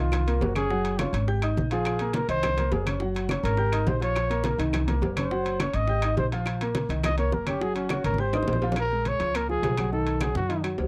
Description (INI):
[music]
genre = Afro-Cuban jazz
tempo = 208 BPM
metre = 4/4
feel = straight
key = Bb minor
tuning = A4 = 443 Hz
[part]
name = breathy trumpet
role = melody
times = 0.0-10.6 s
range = Db4 to Eb5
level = -31 LUFS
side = equal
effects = none
[part]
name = warm grand piano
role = accompaniment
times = 0.0-10.9 s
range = Eb3 to G6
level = -32 LUFS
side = equal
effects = none
[part]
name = upright bass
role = bass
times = 0.0-10.9 s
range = Gb1 to F#2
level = -31 LUFS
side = equal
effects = none
[part]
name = bongos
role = percussion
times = 0.1-8.6 s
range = none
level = -38 LUFS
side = equal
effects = none
[part]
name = claves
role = percussion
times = 0.1-10.8 s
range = none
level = -40 LUFS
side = equal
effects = none
[part]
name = congas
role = percussion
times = 0.1-10.9 s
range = none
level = -36 LUFS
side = equal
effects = none
[part]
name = timbales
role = percussion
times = 0.1-10.9 s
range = none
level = -38 LUFS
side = equal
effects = none
[sound]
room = little or no reverb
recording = dry, close 1970s-style studio recording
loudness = -26 LUFS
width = mono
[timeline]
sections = 0.0-8.8 A section; 8.8-10.9 B section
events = trumpet solo 0.0-8.8; drum fill 8.0-8.8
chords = 0.1 Cm7b5; 0.7 Gbsus2; 1.3 Ab5; 1.9 Bb5; 2.4 Cm7b5; 3.0 Gbsus2; 3.6 Ab5; 4.2 Bbm; 4.7 Cm7b5; 5.3 Gbsus2; 5.9 Ab5; 6.5 Bb5; 7.0 Cm7b5; 7.6 Gbsus2; 8.2 Abmaj7; 8.8 Bbm7; 9.9 B7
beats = 0.12 0.41 | 0.70 0.99 1.28 1.57 | 1.85 2.14 2.43 2.72 | 3.01 3.30 3.59 3.87 | 4.16 4.45 4.74 5.03 | 5.32 5.60 5.89 6.18 | 6.47 6.75 7.04 7.33 | 7.62 7.91 8.19 8.48 | 8.77 9.06 9.35 9.63 | 9.92 10.21 10.50 10.79